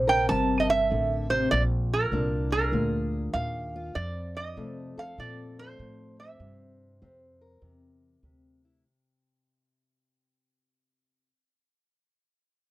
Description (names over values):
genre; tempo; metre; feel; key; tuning
acoustic country blues, solo or duo; 98 BPM; 4/4; swing 66% on 8ths; unclear; A4 = 440 Hz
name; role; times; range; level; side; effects
fingerpicked old ladder-braced acoustic guitar; accompaniment; 0.0-11.3 s; F2 to Bb4; -31 LUFS; left 2 dB; none
upright bass; bass; 0.0-8.8 s; G1 to C3; -30 LUFS; equal; none
metal-body resonator slide guitar; melody; 0.1-8.2 s; Bb4 to A5; -27 LUFS; right 3 dB; none
room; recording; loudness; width
little or no reverb; dry, close 1970s-style studio recording; -24 LUFS; side -16 dB against mid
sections
0.0-8.9 A section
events
fade-out 0.0-8.9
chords
0.0 C7; 1.5 Bb7; 4.0 F7; 6.4 C7